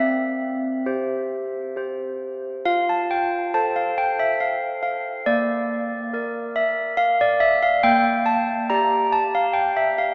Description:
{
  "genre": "classical, tune for handbells",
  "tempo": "70 BPM",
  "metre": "3/4",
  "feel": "straight",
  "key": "F major",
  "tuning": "A4 = 440 Hz",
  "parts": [
    { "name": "handbells", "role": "solo", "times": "0.0-10.1 s", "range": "Bb3 to Bb5", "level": "-19 LUFS", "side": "equal", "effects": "none" }
  ],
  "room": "wet cathedral reverb, RT60 5.1 s",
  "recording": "heard from further back in the room, small speaker sound",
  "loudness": "-19 LUFS",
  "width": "side -27 dB against mid",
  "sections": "0.0-2.7 A section; 2.7-10.1 B section",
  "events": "none",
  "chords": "0.0 C; 2.7 F; 5.3 Bb; 7.8 Gm/Bb"
}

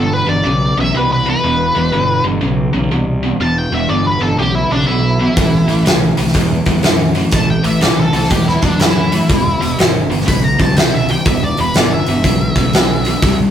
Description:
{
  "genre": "blues rock power trio and southern rock",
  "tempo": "122 BPM",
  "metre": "4/4",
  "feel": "swing 65% on 8ths",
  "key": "E minor",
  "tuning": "A4 = 439 Hz",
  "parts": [
    { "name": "octave-fuzz lead guitar", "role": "melody", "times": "0.0-13.4 s", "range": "D4 to B5", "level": "-18 LUFS", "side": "left 1 dB", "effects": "wah, distortion" },
    { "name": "tight distorted guitar", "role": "riff", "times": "0.0-13.5 s", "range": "E2 to G3", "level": "-17 LUFS", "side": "equal", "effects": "distortion" },
    { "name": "fuzz picked electric bass", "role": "bass", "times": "0.0-13.5 s", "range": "E1 to F#2", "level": "-18 LUFS", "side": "equal", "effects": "overdrive" },
    { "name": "huge arena drum kit", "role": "drums", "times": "5.4-13.4 s", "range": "hi-hat, kick drum, snare drum", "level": "-14 LUFS", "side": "equal", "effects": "none" }
  ],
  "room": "moderate studio reverb, RT60 0.6 s",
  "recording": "rough rehearsal-room recording, warm saturation",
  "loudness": "-12 LUFS",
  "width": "side -9 dB against mid",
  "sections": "0.0-13.5 A section",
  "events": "none",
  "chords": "0.0 Em; 5.4 Am; 9.3 Em"
}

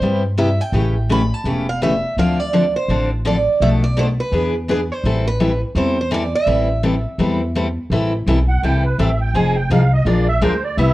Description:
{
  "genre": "acoustic string swing (jazz manouche)",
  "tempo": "167 BPM",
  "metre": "4/4",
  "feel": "swing 60% on 8ths",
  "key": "A minor",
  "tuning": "A4 = 442 Hz",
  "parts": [
    { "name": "picked steel-string acoustic guitar", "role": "melody", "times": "0.0-7.5 s", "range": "B4 to B5", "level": "-21 LUFS", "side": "right 3 dB", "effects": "plate reverb" },
    { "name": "picked steel-string acoustic guitar", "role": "accompaniment", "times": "0.0-10.9 s", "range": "B2 to Bb4", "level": "-19 LUFS", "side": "left 2 dB", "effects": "none" },
    { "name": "upright bass", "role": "bass", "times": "0.0-10.9 s", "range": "E1 to G2", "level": "-19 LUFS", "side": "equal", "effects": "none" },
    { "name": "musette accordion", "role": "second line", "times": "8.5-10.9 s", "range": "B4 to Ab5", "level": "-22 LUFS", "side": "right 3 dB", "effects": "none" }
  ],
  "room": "light reverb",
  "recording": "worn, warbling old tape, cassette tape, warbly pitch drift",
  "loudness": "-15 LUFS",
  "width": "side -17 dB against mid",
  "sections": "0.0-7.9 A section; 7.9-10.9 B section",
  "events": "accordion solo 7.9-10.9",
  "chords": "0.0 Cmaj7; 0.7 A7; 2.2 Dm7; 3.6 Bm7b5; 4.3 E7; 5.0 Am7; 9.3 Fm7; 10.1 Bb7"
}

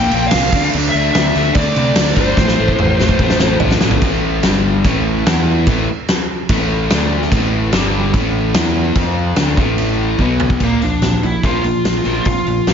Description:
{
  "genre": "hard rock",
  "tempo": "146 BPM",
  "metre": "4/4",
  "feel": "straight",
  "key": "A phrygian",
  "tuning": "A4 = 440 Hz",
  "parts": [
    { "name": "bluesy overdriven lead guitar", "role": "melody", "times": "0.0-3.6, 10.6-12.7 s", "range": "Bb3 to G5", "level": "-18 LUFS", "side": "left 1 dB", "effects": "distortion, slapback echo" },
    { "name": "crunchy overdriven guitar", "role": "riff", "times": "0.0-12.7 s", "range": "G2 to F4", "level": "-17 LUFS", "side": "left 1 dB", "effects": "none" },
    { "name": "growling fingered electric bass", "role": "bass", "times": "0.0-12.7 s", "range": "G1 to C3", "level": "-20 LUFS", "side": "equal", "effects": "overdrive" },
    { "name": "huge arena drum kit", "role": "drums", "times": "0.1-12.7 s", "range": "crash cymbal, hi-hat, kick drum, snare drum, toms", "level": "-17 LUFS", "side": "equal", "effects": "none" }
  ],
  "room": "small room ambience",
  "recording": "nothing above 7.5 kHz",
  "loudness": "-12 LUFS",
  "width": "side -7 dB against mid",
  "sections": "0.0-4.0 A section; 4.0-10.6 B section; 10.6-12.7 C section",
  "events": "drum fill 2.4-4.0, 10.2-10.6",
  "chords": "0.0 Bb5; 0.5 D5; 2.4 A5; 4.4 G5; 4.8 A5; 5.3 E5; 5.7 A5; 6.9 D5; 7.3 A5; 7.7 G5; 8.1 A5; 8.6 E5; 9.0 F5; 9.4 A5; 10.2 B5; 10.6 Bb5"
}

